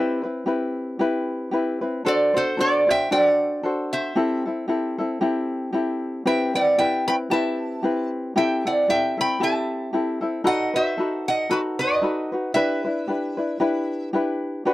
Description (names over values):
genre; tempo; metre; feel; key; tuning
Hawaiian; 114 BPM; 4/4; swing 56% on 8ths; E minor; A4 = 441 Hz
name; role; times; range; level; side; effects
lap resonator guitar; melody; 0.0-14.1 s; F#4 to B5; -22 LUFS; right 1 dB; none
tenor ukulele; accompaniment; 0.0-14.7 s; C4 to C5; -23 LUFS; left 1 dB; none
room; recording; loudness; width
little or no reverb; dry, close 1970s-style studio recording; -20 LUFS; side -16 dB against mid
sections
0.0-14.7 A section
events
none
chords
0.0 Cmaj7; 2.0 D7; 4.2 Am7; 6.3 Cmaj7; 8.4 Am7; 10.5 B7; 12.6 Em7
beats
0.46 0.99 1.52 | 2.04 2.57 3.10 3.62 | 4.15 4.67 5.20 5.73 | 6.25 6.78 7.30 7.83 | 8.35 8.88 9.40 9.93 | 10.45 10.97 11.50 12.03 | 12.55 13.08 13.60 14.13 | 14.65